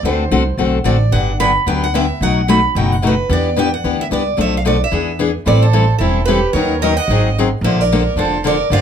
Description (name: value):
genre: acoustic string swing (jazz manouche)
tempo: 222 BPM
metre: 4/4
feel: swing 58% on 8ths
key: E minor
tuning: A4 = 442 Hz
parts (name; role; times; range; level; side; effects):
- picked steel-string acoustic guitar; melody; 0.0-8.8 s; A4 to B5; -19 LUFS; right 3 dB; none
- picked steel-string acoustic guitar; accompaniment; 0.0-8.8 s; B2 to A#4; -17 LUFS; left 4 dB; none
- upright bass; bass; 0.0-8.8 s; E1 to E2; -17 LUFS; right 1 dB; none
- warm violin; second line; 5.5-8.8 s; E4 to D#5; -22 LUFS; right 8 dB; none
room: moderate club reverb, RT60 0.6 s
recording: none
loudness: -13 LUFS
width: side -8 dB against mid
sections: 0.0-5.5 A section; 5.5-8.8 B section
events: none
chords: 0.0 D7; 1.1 Gmaj7; 2.2 B7; 3.3 Em7; 4.4 Bm7b5; 4.9 E7; 5.5 Am9; 6.5 D#m7; 7.1 G#7; 7.6 Bbmaj7